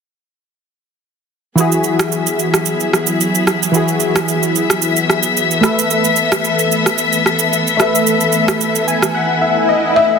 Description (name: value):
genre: afrobeats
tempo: 111 BPM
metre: 4/4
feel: swing 55% on 16ths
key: E major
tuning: A4 = 440 Hz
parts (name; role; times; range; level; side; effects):
- warm analog keys; accompaniment; 1.6-10.2 s; E3 to G#5; -16 LUFS; equal; chorus
- warm studio string section; sustained chords; 1.6-10.2 s; E3 to E5; -17 LUFS; left 3 dB; none
- electronic shaker and rim click; drums; 1.6-9.1 s; none; -18 LUFS; right 3 dB; soft clipping on snare
- swell; sound effects; 8.8-10.2 s; none; -21 LUFS; left 1 dB; none
- folk marimba with soft mallets; melody; 10.0-10.2 s; E5; -11 LUFS; left 3 dB; none
room: light reverb, small room reverb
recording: dense, heavily limited modern master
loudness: -12 LUFS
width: side -6 dB against mid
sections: 1.6-10.2 A section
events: synth keys fill 8.6-10.2; swell 8.8-10.2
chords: 1.6 Eadd9; 5.6 Asus2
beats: | 1.58 2.12 2.66 3.20 | 3.74 4.28 4.82 5.36 | 5.90 6.44 6.99 7.53 | 8.07 8.61 9.15 9.69